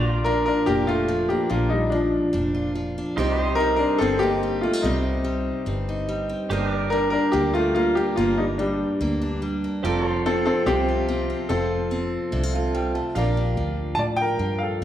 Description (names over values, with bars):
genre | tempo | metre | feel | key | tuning
honky-tonk and classic country | 144 BPM | 4/4 | straight | unclear | A4 = 440 Hz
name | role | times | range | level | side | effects
clear upright piano | accompaniment | 0.0-14.8 s | C4 to Bb5 | -33 LUFS | right 5 dB | none
picked steel-string acoustic guitar | accompaniment | 0.0-14.8 s | G2 to Bb4 | -28 LUFS | equal | none
pedal steel guitar | sustained chords | 0.0-13.1 s | F4 to Bb5 | -34 LUFS | right 1 dB | none
vintage muted fingered electric bass | bass | 0.0-14.8 s | F1 to A2 | -28 LUFS | equal | none
clear upright piano | melody | 0.2-14.8 s | F3 to A5 | -23 LUFS | left 1 dB | none
room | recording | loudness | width
wet recital hall reverb, RT60 1.6 s | recorded in a church or concert hall | -20 LUFS | side -11 dB against mid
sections
0.0-13.2 A section; 13.2-14.8 B section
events
upright piano fill 12.3-13.2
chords
0.0 Bb; 3.2 Cm; 6.5 Gm; 9.8 F; 13.2 Bb6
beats
0.25 0.67 1.09 | 1.50 1.92 2.34 2.75 | 3.17 3.59 4.00 4.42 | 4.84 5.25 5.67 6.09 | 6.50 6.92 7.34 7.75 | 8.17 8.59 9.00 9.42 | 9.83 10.25 10.67 11.08 | 11.50 11.91 12.33 12.74 | 13.16 13.58 13.99 14.41 | 14.82